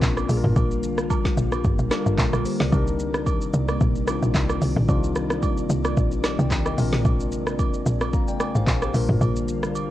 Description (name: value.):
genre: amapiano.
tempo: 111 BPM.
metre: 4/4.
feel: swing 55% on 16ths.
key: C minor.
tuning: A4 = 445 Hz.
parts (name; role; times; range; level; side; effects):
bell-like tine electric piano; accompaniment; 0.0-9.9 s; G3 to Bb5; -28 LUFS; left 4 dB; wide subtle chorus, cassette tape.
glassy FM pad; sustained chords; 0.0-9.9 s; C3 to D5; -30 LUFS; right 1 dB; ensemble chorus, built-in reverb, cassette tape.
woody log drum bass; bass; 0.0-9.9 s; G1 to C2; -24 LUFS; equal; none.
deep house drum kit; drums; 0.0-9.9 s; handclaps, hi-hat, kick drum, rim click, shaker, snare drum, toms; -24 LUFS; equal; cassette tape.
agogo bells and woodblock; percussion; 0.2-9.9 s; none; -36 LUFS; right 9 dB; none.
room: digital ambience.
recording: home recording on cassette.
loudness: -20 LUFS.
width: side -14 dB against mid.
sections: 0.0-9.9 A section.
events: break 9.2-9.9.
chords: 0.3 Gm7; 2.7 Cm9; 6.8 Bb9; 8.9 Gm7.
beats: 0.02 | 0.56 1.10 1.64 2.18 | 2.72 3.26 3.81 4.35 | 4.89 5.43 5.97 6.51 | 7.05 7.59 8.13 8.67 | 9.21 9.75.